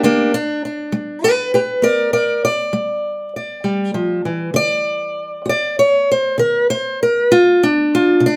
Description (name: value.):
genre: acoustic country blues, solo or duo.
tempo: 66 BPM (dotted quarters).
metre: 12/8.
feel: straight.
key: unclear.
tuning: A4 = 445 Hz.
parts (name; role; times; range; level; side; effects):
fingerpicked steel-string acoustic guitar; solo; 0.0-8.4 s; C3 to D5; -17 LUFS; equal; none.
room: moderate studio reverb, RT60 0.5 s.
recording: none.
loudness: -17 LUFS.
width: mono.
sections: 0.0-8.4 A section.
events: none.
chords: 0.0 G; 4.6 D.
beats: 0.02 | 0.93 1.84 2.75 3.66 | 4.57 5.48 6.39 7.31 | 8.22.